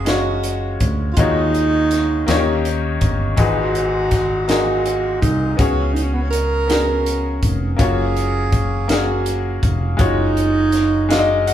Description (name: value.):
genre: slow gospel.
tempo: 54 BPM (dotted quarters).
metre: 6/8.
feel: straight.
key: F# major.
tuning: A4 = 440 Hz.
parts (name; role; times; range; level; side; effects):
breathy tenor saxophone; melody; 0.0-11.4 s; B3 to A#4; -21 LUFS; right 3 dB; none.
bright upright piano; accompaniment; 0.0-11.5 s; G#2 to F#5; -21 LUFS; left 4 dB; none.
fingered electric bass; bass; 0.0-11.5 s; E#1 to D#2; -21 LUFS; equal; none.
crisp fusion drum kit; drums; 0.1-11.5 s; hi-hat, kick drum, snare drum; -21 LUFS; equal; none.
room: wet large studio reverb, RT60 1.4 s.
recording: band playing live in one room.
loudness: -15 LUFS.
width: side -11 dB against mid.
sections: 0.0-11.5 A section.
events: upright piano fill 11.1-11.5.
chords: 0.0 F#maj9; 1.2 D#m11; 2.3 D#7; 3.4 G#m9; 5.6 C#7sus4; 7.8 F#maj7; 10.0 D#m11/F#.